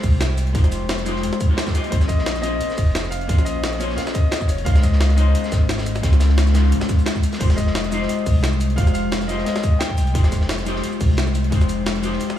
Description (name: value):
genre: liquid drum and bass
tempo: 175 BPM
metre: 4/4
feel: swing 54% on 16ths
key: F minor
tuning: A4 = 441 Hz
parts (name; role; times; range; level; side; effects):
- vintage hollow-body jazz guitar; accompaniment; 0.0-12.4 s; Ab3 to Eb5; -24 LUFS; left 4 dB; lush chorus, analog delay
- sub bass with octave; bass; 0.0-12.2 s; Eb1 to Db2; -20 LUFS; equal; none
- crunchy breakbeat drum kit; drums; 0.0-12.3 s; hi-hat, snare drum; -33 LUFS; left 1 dB; high-pass filter on hats, small room reverb, high-pass filter on snare, high-pass filter on room
- electronic kick drum; drums; 0.0-11.6 s; none; -18 LUFS; equal; small room reverb
- jungle sampler-style drum kit; drums; 0.0-12.4 s; crash cymbal, hi-hat, ride cymbal, shaker, snare drum; -28 LUFS; equal; small room reverb
- clear grand piano; melody; 1.9-12.4 s; C5 to G5; -29 LUFS; left 2 dB; tape echo
room: light reverb, studio ambience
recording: small room ambience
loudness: -17 LUFS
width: side -11 dB against mid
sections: 0.0-12.4 A section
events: none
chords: 0.0 Fm9; 1.9 Bbm9; 4.7 Dbmaj9; 7.4 Fm9